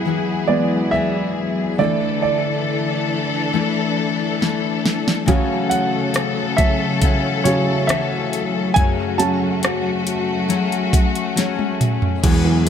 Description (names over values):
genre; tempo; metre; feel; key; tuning
pop ballad; 69 BPM; 4/4; straight; unclear; A4 = 439 Hz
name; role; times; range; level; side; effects
clear grand piano; accompaniment; 0.0-12.7 s; E1 to A5; -21 LUFS; right 2 dB; none
warm studio string section; sustained chords; 0.0-12.7 s; C#3 to A4; -22 LUFS; left 1 dB; none
picked steel-string acoustic guitar; arpeggios; 0.0-12.7 s; F#2 to A4; -24 LUFS; left 9 dB; tape echo
smooth R&B drum kit; drums; 4.4-12.7 s; crash cymbal, hi-hat, kick drum, rim click, snare drum, toms; -19 LUFS; right 1 dB; overdrive
room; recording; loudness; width
light reverb, studio reverb; none; -17 LUFS; side -8 dB against mid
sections
0.0-12.2 A section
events
grand piano solo 0.0-12.2; drum fill 4.4-5.3, 11.4-12.2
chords
0.0 Eadd9; 1.8 Dsus2; 5.3 A6/C#; 8.8 F#madd9